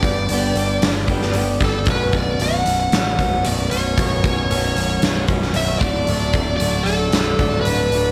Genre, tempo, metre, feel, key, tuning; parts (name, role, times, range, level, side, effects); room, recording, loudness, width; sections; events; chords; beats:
quiet-loud alternative rock; 114 BPM; 4/4; straight; B minor; A4 = 435 Hz
smooth overdriven lead guitar; melody; 0.0-8.1 s; A4 to F#5; -24 LUFS; equal; slapback echo
fingerpicked swing-style acoustic guitar; arpeggios; 0.0-8.1 s; D2 to G4; -27 LUFS; equal; slapback echo
fuzz picked electric bass; bass; 0.0-8.1 s; B0 to A1; -24 LUFS; equal; overdrive
big rock drum kit; drums; 0.0-8.0 s; hi-hat, kick drum, snare drum; -23 LUFS; equal
moderate lush hall reverb, RT60 1.8 s; big arena sound; -19 LUFS; mono
0.0-8.1 A section
0.0 G; 1.9 Bsus2; 5.8 D6
0.29 0.82 1.34 | 1.87 2.40 2.92 3.45 | 3.97 4.50 5.02 5.55 | 6.08 6.60 7.12 7.65